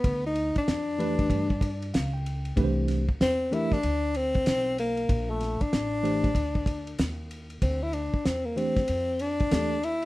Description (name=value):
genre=hip hop, jazz-hop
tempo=95 BPM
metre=4/4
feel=swing 63% on 16ths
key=D minor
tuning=A4 = 440 Hz
part: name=mellow tenor saxophone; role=melody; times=0.0-10.1 s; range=A3 to E4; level=-28 LUFS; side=left 2 dB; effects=none
part: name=upright bass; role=bass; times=0.0-10.1 s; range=A1 to G2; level=-32 LUFS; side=equal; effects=none
part: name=cloth-damped thuddy drum kit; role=drums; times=0.0-10.1 s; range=hi-hat, kick drum, ride cymbal, snare drum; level=-28 LUFS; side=equal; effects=none
part: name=mellow tine electric piano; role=accompaniment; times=1.0-9.8 s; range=E3 to G5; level=-30 LUFS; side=right 1 dB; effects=medium stereo tremolo
room=light reverb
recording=rough home demo mix, vinyl crackle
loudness=-24 LUFS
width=side -18 dB against mid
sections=0.0-10.1 A section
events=tenor saxophone solo 0.0-10.1; tine electric piano fill 1.3-2.6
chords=0.0 G13/D; 2.6 C69; 5.1 Bbmaj7; 7.6 Dm7